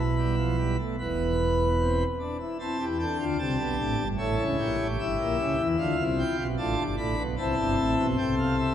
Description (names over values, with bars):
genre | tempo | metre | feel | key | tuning
classical, baroque-style 4-part fugue for pipe organ | 75 BPM | 4/4 | straight | A minor | A4 = 441 Hz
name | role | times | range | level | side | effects
pipe organ, plenum | solo | 0.0-8.7 s | E1 to B5 | -24 LUFS | equal | none
room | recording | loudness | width
wet church reverb, RT60 3.5 s | dark, warm production | -24 LUFS | side -10 dB against mid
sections
0.0-2.6 A section; 2.6-8.7 B section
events
none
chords
0.0 Esus4/B; 1.0 E5; 2.6 Am; 4.2 A7; 5.8 Dm; 7.4 Am